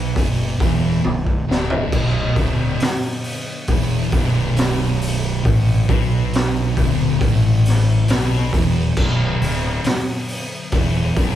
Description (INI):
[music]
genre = stoner and doom metal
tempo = 68 BPM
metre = 4/4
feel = straight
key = B minor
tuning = A4 = 436 Hz
[part]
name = string machine, violas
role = sustained chords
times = 0.0-11.4 s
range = D3 to B3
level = -32 LUFS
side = left 1 dB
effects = none
[part]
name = thick fuzz guitar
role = riff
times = 0.0-11.4 s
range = B1 to B2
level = -22 LUFS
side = left 3 dB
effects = distortion
[part]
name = thick fuzz guitar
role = riff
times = 0.0-11.4 s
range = B1 to B2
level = -24 LUFS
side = right 5 dB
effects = distortion
[part]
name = fuzz fingered electric bass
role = bass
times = 0.0-11.4 s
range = B0 to B1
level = -24 LUFS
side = equal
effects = overdrive
[part]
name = raw garage drum kit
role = drums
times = 0.2-11.4 s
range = crash cymbal, hi-hat, kick drum, snare drum, toms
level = -19 LUFS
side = equal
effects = none
[sound]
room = wet large studio reverb, RT60 1.2 s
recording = band playing live in one room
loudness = -16 LUFS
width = side -11 dB against mid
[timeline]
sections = 0.0-11.4 A section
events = drum fill 1.0-1.9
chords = 0.0 Bm